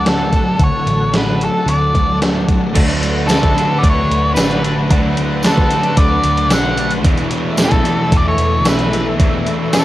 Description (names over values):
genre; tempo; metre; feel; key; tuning
rock, shoegaze and dream pop; 112 BPM; 4/4; straight; unclear; A4 = 439 Hz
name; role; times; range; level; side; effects
octave-fuzz lead guitar; melody; 0.0-9.8 s; A4 to F#5; -19 LUFS; equal; distortion, cassette tape, analog delay
lush unison pad; sustained chords; 0.0-9.8 s; A3 to C#6; -25 LUFS; equal; chorus, tremolo
overdriven semi-hollow guitar; riff; 0.0-9.8 s; D3 to G#4; -22 LUFS; right 5 dB; reverse reverb
thick fuzz guitar; riff; 0.0-9.8 s; E2 to F#4; -21 LUFS; left 5 dB; distortion, analog chorus
vintage muted picked electric bass; bass; 0.0-9.8 s; A1 to E2; -21 LUFS; equal; none
gated 80s digital drum machine; drums; 0.1-9.8 s; crash cymbal, hi-hat, kick drum, snare drum; -16 LUFS; equal; gated reverb, gated reverb snare, overdrive, cassette tape
tight distorted guitar; riff; 2.7-9.8 s; E2 to D4; -24 LUFS; equal; distortion
tambourine; percussion; 3.3-9.8 s; none; -28 LUFS; right 3 dB; none
room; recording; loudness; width
light reverb; home recording on cassette; -12 LUFS; side -15 dB against mid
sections
0.0-2.7 A section; 2.7-9.8 B section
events
none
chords
0.0 D; 2.7 D6; 7.0 E7sus4